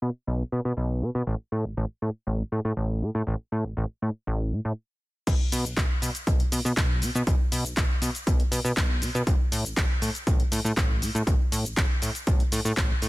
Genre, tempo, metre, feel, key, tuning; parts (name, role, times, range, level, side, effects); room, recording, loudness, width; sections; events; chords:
filtered disco house; 120 BPM; 4/4; straight; A4 = 442 Hz
plucky analog bass; bass; 0.0-13.1 s; A1 to B2; -27 LUFS; equal; sidechain pumping, low-pass filter
electronic kick drum; drums; 5.3-12.9 s; -24 LUFS; equal
punchy analog drum machine; drums; 5.3-13.1 s; cabasa, crash cymbal, handclaps, hi-hat; -30 LUFS; left 1 dB; sidechain pumping on hats, sidechain pumping on cymbals, sidechain pumping on perc
little or no reverb; -24 LUFS; side -19 dB against mid
0.0-5.3 A section; 5.3-13.1 B section
filter sweep on analog synth bass 0.0-5.3; stop 4.8-5.3; drop 5.3-13.1